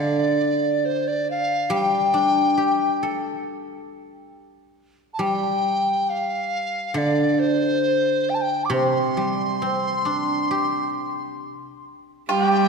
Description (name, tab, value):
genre	chinese traditional, Chinese chamber ensemble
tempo	68 BPM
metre	4/4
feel	rubato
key	unclear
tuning	A4 = 440 Hz
part	mellow large dizi	melody	0.0-12.7 s	C5 to D6	-22 LUFS	left 1 dB	none
part	guzheng	accompaniment	0.0-12.3 s	C3 to A4	-24 LUFS	equal	none
part	breathy bright low xiao	second line	12.3-12.7 s	G4	-24 LUFS	left 5 dB	none
part	pipa	second line	12.3-12.7 s	G4	-23 LUFS	right 6 dB	none
part	warm cello	second line	12.3-12.7 s	G3	-20 LUFS	right 12 dB	none
part	woodblock	percussion	12.3-12.5 s	none	-30 LUFS	left 2 dB	none
room	wet concert hall reverb, RT60 2.5 s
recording	minimal, uncompressed stereo recording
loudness	-20 LUFS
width	side -5 dB against mid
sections	0.0-12.3 A section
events	none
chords	none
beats	0.82 | 1.70 2.57 3.44 4.31 | 5.19 6.08 6.95 7.82 | 8.71 9.60 10.49 11.39 | 12.29